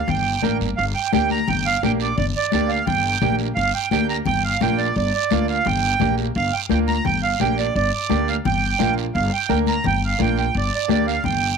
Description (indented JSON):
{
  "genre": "latin, cumbia",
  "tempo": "172 BPM",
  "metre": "4/4",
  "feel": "straight",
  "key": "G minor",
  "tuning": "A4 = 440 Hz",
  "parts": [
    { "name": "accordion", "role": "melody", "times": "0.0-11.6 s", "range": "D5 to Bb5", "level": "-22 LUFS", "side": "right 7 dB", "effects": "none" },
    { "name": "upright bass", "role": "bass", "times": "0.1-11.5 s", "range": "G1 to D2", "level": "-24 LUFS", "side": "left 2 dB", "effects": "none" },
    { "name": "congas", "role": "percussion", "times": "0.1-11.4 s", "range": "none", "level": "-24 LUFS", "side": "left 17 dB", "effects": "none" },
    { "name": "guiro", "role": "percussion", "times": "0.1-11.6 s", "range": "none", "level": "-32 LUFS", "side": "right 13 dB", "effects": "none" },
    { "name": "bright upright piano", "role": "accompaniment", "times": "0.4-11.1 s", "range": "Bb3 to Bb4", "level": "-26 LUFS", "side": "right 14 dB", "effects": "none" }
  ],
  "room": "light reverb, small room ambience",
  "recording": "1960s-style stereo with parts hard left and right",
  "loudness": "-18 LUFS",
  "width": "side -5 dB against mid",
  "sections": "0.8-11.6 A section",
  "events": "none",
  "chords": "0.0 Gm"
}